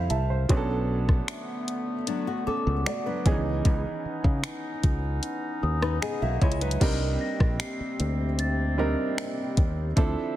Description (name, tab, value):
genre	contemporary R&B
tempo	76 BPM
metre	4/4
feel	straight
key	unclear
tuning	A4 = 440 Hz
part	dark grand piano	accompaniment	0.0-10.4 s	Eb3 to A5	-31 LUFS	right 4 dB	none
part	warm woodwind section	sustained chords	0.0-10.4 s	C3 to E5	-34 LUFS	left 1 dB	none
part	fingered electric bass	bass	0.0-10.1 s	Bb1 to Db3	-27 LUFS	equal	none
part	smooth R&B drum kit	drums	0.1-10.2 s	crash cymbal, finger snaps, hi-hat, kick drum, rim click	-25 LUFS	equal	soft clipping on snare, vintage 12-bit sampler grit
part	large celesta	texture	1.3-10.1 s	E5 to C7	-38 LUFS	left 3 dB	digital delay
part	nylon-string guitar	arpeggios	2.1-7.0 s	F#3 to Cb5	-32 LUFS	left 8 dB	digital delay
room	studio reverb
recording	dense, heavily limited modern master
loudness	-24 LUFS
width	side -13 dB against mid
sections	0.0-6.8 A section; 6.8-10.4 B section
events	grand piano fill 0.0-0.5, 5.6-6.8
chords	0.5 Bm9; 3.3 Dbm9; 6.8 Cm9